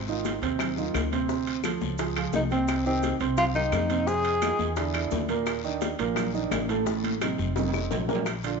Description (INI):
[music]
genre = Afro-Cuban jazz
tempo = 172 BPM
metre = 4/4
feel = straight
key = unclear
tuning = A4 = 440 Hz
[part]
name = upright bass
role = bass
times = 0.0-8.6 s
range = F1 to F2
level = -32 LUFS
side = left 1 dB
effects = none
[part]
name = dark upright piano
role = accompaniment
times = 0.1-8.6 s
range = A2 to C5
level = -29 LUFS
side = right 10 dB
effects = none
[part]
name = congas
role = percussion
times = 0.1-8.6 s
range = none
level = -34 LUFS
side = left 12 dB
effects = none
[part]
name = maracas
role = percussion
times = 0.1-8.6 s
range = none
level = -48 LUFS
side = right 11 dB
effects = none
[part]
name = bongos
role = percussion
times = 0.2-8.4 s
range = none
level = -35 LUFS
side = left 13 dB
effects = none
[part]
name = guiro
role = percussion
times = 0.2-8.6 s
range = none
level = -42 LUFS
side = left 13 dB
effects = none
[part]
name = timbales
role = percussion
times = 0.3-8.6 s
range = none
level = -36 LUFS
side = right 10 dB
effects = none
[part]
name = claves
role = percussion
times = 0.6-8.4 s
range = none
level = -40 LUFS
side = left 12 dB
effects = none
[part]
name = breathy tenor saxophone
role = melody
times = 2.4-4.8 s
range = C4 to Ab4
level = -26 LUFS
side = left 1 dB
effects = none
[sound]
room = moderate echo chamber reverb, RT60 1.8 s, small room ambience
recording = 1960s-style stereo with parts hard left and right, nothing above 7.7 kHz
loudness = -24 LUFS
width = side -5 dB against mid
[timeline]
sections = 0.0-8.3 A section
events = drum fill 6.9-8.3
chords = 0.0 Ab6; 1.3 Dm7; 2.0 C#; 2.7 Cm; 4.1 Fm7; 4.8 Bbadd11; 5.5 Eb5; 6.9 Adim; 7.6 F5